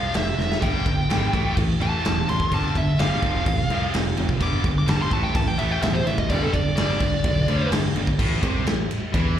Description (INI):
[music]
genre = hard rock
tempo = 127 BPM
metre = 4/4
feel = straight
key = unclear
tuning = A4 = 438 Hz
[part]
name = dark smooth lead guitar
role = melody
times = 0.0-7.7 s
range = A4 to D6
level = -27 LUFS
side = equal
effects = overdrive, slapback echo, digital delay
[part]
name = tight distorted guitar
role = riff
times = 0.0-9.4 s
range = F2 to A3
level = -29 LUFS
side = left 9 dB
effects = distortion, slapback echo
[part]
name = fingered electric bass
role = bass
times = 0.0-9.4 s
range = E1 to E2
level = -25 LUFS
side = equal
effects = none
[part]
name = big rock drum kit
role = drums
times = 0.1-9.3 s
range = crash cymbal, kick drum, ride cymbal, snare drum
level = -24 LUFS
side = equal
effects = none
[part]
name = scooped high-gain guitar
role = riff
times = 0.6-9.4 s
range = F2 to A3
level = -28 LUFS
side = right 7 dB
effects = distortion, slapback echo
[sound]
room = light reverb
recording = live gig heard through the venue's PA, club reverb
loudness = -20 LUFS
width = side -10 dB against mid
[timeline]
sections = 0.0-8.2 A section; 8.2-9.4 B section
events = lead electric guitar solo 0.0-8.2; drum fill 0.4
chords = 0.0 F5; 0.6 G5; 1.3 A5; 2.5 G5; 3.2 F; 4.4 G5; 5.1 A5; 6.3 G5; 8.2 A5